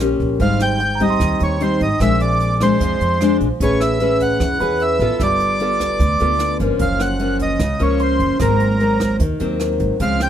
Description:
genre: bossa nova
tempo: 150 BPM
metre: 4/4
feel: straight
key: unclear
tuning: A4 = 440 Hz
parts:
  - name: nylon-string guitar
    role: accompaniment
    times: 0.0-10.3 s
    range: Gb2 to B4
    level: -19 LUFS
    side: left 2 dB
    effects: none
  - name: upright bass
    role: bass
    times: 0.0-10.3 s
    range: Gb1 to F2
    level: -21 LUFS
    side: right 1 dB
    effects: none
  - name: jazz brush drum kit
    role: drums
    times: 0.2-10.3 s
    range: hi-hat, kick drum, rim click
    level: -26 LUFS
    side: right 1 dB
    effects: none
  - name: accordion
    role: melody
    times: 0.4-10.3 s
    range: Bb4 to G5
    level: -20 LUFS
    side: right 2 dB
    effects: none
  - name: barky tine electric piano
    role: accompaniment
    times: 0.8-2.0, 4.6-5.3, 8.0-8.6 s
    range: G5 to C6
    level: -27 LUFS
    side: moving between equal and right 13 dB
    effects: auto-pan
room: light reverb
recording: none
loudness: -15 LUFS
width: side -10 dB against mid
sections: 0.4-10.3 A section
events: none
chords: 0.4 Abmaj7; 2.0 Bb9; 3.6 Amaj9; 5.2 G9; 6.8 Gbmaj7; 8.4 Ab9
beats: 0.00 | 0.40 0.80 1.20 1.60 | 2.00 2.40 2.80 3.20 | 3.60 4.00 4.40 4.80 | 5.20 5.60 6.00 6.40 | 6.80 7.20 7.60 8.00 | 8.40 8.80 9.20 9.60 | 10.00

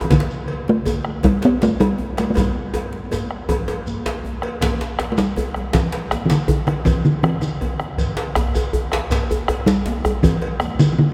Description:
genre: west african traditional, West African drum ensemble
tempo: 107 BPM (dotted quarters)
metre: 12/8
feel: straight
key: G major pentatonic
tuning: A4 = 440 Hz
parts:
  - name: talking drum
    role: melody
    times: 0.0-11.1 s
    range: D3 to B3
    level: -21 LUFS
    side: equal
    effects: none
  - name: djembe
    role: percussion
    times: 0.0-10.4 s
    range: none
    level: -28 LUFS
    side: equal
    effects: none
  - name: bombo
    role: percussion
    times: 0.1-10.9 s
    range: none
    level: -29 LUFS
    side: equal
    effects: none
  - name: congas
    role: percussion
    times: 0.1-10.8 s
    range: none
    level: -34 LUFS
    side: equal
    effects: none
  - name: cowbell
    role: percussion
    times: 0.1-11.0 s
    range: none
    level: -33 LUFS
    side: equal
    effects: none
  - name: djembe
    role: percussion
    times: 0.1-10.9 s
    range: none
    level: -31 LUFS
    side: equal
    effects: none
  - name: shekere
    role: percussion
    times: 0.1-11.0 s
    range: none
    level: -36 LUFS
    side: equal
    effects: none
room: wet cathedral reverb, RT60 6.5 s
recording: recorded in a church or concert hall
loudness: -20 LUFS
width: mono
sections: 0.0-4.6 A section; 4.6-11.1 B section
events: drum fill 2.4-4.6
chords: none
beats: | 0.11 0.68 1.24 1.80 | 2.37 2.93 3.49 4.05 | 4.62 5.18 5.74 6.30 | 6.86 7.42 7.99 8.55 | 9.11 9.67 10.23 10.79

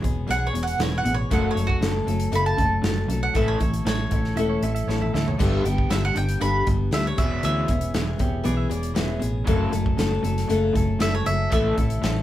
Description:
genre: folk rock and heartland rock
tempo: 118 BPM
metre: 4/4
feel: straight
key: A major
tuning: A4 = 439 Hz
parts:
  - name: picked steel-string acoustic guitar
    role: accompaniment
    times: 0.0-12.2 s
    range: F#2 to A4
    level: -26 LUFS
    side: left 3 dB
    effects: none
  - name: crunchy overdriven guitar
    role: riff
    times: 0.0-12.2 s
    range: E2 to A3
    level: -31 LUFS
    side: equal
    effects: none
  - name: fingered electric bass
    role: bass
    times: 0.0-12.2 s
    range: E1 to D2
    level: -26 LUFS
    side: equal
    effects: none
  - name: natural country drum kit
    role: drums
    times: 0.0-12.2 s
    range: crash cymbal, hi-hat, kick drum, snare drum, toms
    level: -26 LUFS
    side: equal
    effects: none
  - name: mandolin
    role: melody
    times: 0.3-12.2 s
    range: F#4 to B5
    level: -27 LUFS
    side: right 2 dB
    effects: none
  - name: pedal steel guitar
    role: second line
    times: 4.4-9.2 s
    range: G4 to G5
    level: -33 LUFS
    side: right 6 dB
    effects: none
room: moderate studio ambience, RT60 0.5 s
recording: band playing live in one room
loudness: -20 LUFS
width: side -13 dB against mid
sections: 0.0-12.2 A section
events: mandolin solo 0.0-12.2; drum fill 4.9-5.4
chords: 0.0 E6; 1.3 F#m; 3.4 A; 5.4 G; 7.2 E6; 9.5 F#m; 11.5 A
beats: 0.29 0.80 | 1.31 1.82 2.33 2.85 | 3.36 3.87 4.38 4.89 | 5.40 5.91 6.42 6.93 | 7.44 7.95 8.46 8.97 | 9.48 9.99 10.50 11.01 | 11.52 12.03

